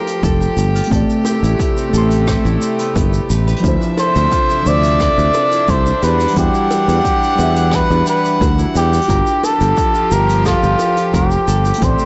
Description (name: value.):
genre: sunset chillout.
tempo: 88 BPM.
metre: 4/4.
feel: straight.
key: unclear.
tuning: A4 = 440 Hz.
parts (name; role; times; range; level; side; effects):
mellow FM electric piano; accompaniment; 0.0-12.1 s; F3 to C6; -26 LUFS; equal; chorus, phaser, digital delay.
warm chamber string section; sustained chords; 0.0-12.1 s; C3 to F#5; -24 LUFS; equal; none.
concert harp; arpeggios; 0.0-12.1 s; B3 to B4; -26 LUFS; equal; digital delay.
jazz brush drum kit; drums; 0.1-12.1 s; hi-hat, rim click, shaker; -32 LUFS; equal; none.
sustaining fretless electric bass; bass; 0.2-11.9 s; F1 to E2; -18 LUFS; equal; transformer saturation.
electronic kick drum; drums; 0.2-12.0 s; none; -22 LUFS; equal; overdrive.
bongos; percussion; 1.2-10.9 s; none; -30 LUFS; equal; none.
trumpet with cup mute; melody; 4.0-12.1 s; F4 to D5; -18 LUFS; equal; digital delay.
room: light reverb, small room ambience.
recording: blown-out, overdriven recording, overdrive, nothing above 7.9 kHz.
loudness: -15 LUFS.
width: mono.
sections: 0.0-12.1 A section.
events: none.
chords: 0.0 Gm9; 0.9 Am9; 3.6 Dm9; 6.0 Em9; 9.1 Gm9.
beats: 0.23 | 0.91 1.59 2.28 2.96 | 3.64 4.32 5.00 5.68 | 6.37 7.05 7.73 8.41 | 9.09 9.78 10.46 11.14 | 11.82.